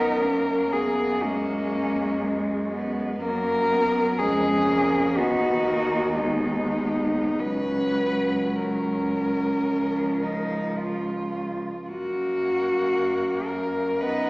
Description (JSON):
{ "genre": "classical, lyrical piece for cello ensemble", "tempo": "48-63 BPM", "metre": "4/4", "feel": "rubato", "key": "F# major", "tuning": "A4 = 440 Hz", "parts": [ { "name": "rich cello", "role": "melody", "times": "0.0-14.3 s", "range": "C#4 to B4", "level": "-25 LUFS", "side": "left 1 dB", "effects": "none" }, { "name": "rich cello", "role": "second line", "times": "0.0-14.3 s", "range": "G#3 to E#4", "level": "-27 LUFS", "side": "right 1 dB", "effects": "none" }, { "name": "clear cello", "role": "accompaniment", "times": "0.0-14.3 s", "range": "E#3 to B3", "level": "-30 LUFS", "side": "equal", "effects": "none" }, { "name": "rich cello", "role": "bass", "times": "0.0-14.3 s", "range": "C#2 to F#2", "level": "-31 LUFS", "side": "equal", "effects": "none" } ], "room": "wet recital hall reverb, RT60 1.7 s", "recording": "heard from further back in the room, small speaker sound", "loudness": "-22 LUFS", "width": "side -22 dB against mid", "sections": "0.0-14.3 A section", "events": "none", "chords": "0.0 C#5/F#; 3.2 F#; 5.2 B/D#; 7.4 F#/C#; 9.7 C#; 11.9 F#", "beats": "0.21 1.24 2.23 | 3.22 4.21 5.17 6.20 | 7.40 8.55 9.67 10.79 | 11.89 12.95 14.01" }